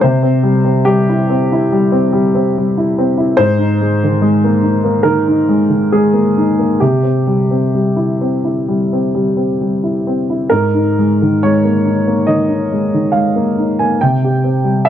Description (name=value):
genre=neoclassical minimalist piano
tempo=64-73 BPM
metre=4/4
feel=rubato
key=Ab major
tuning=A4 = 440 Hz
part: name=warm upright piano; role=solo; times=0.0-14.9 s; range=Ab2 to Ab5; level=-11 LUFS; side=equal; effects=none
room=light reverb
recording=dry, close 1970s-style studio recording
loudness=-11 LUFS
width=side -10 dB against mid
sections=0.0-14.9 A section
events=none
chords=0.0 C; 3.4 Absus2; 6.8 C; 10.5 Absus2; 14.0 C5